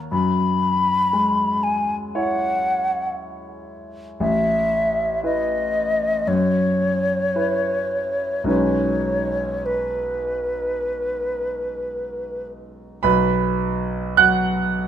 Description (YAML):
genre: classical, impressionist duo for flute and grand piano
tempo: 51-60 BPM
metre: 4/4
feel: rubato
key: B mixolydian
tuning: A4 = 442 Hz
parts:
  - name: clear concert grand piano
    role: accompaniment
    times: 0.0-14.9 s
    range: A1 to F#6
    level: -21 LUFS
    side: right 1 dB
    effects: none
  - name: mellow hollow concert flute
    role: melody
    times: 0.1-12.5 s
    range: B4 to B5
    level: -21 LUFS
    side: left 1 dB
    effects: none
room: moderate recital hall reverb, RT60 1.6 s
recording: close, detailed microphones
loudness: -19 LUFS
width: side -9 dB against mid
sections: 0.0-13.0 A section; 13.0-14.9 A section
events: none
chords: 0.1 F#9sus4; 4.2 Asus2; 6.3 F#7sus4; 8.5 B69; 13.0 B5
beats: | 0.12 1.12 2.13 3.16 | 4.20 5.25 6.29 7.36 | 8.48 9.65 10.80 11.92 | 13.04 14.19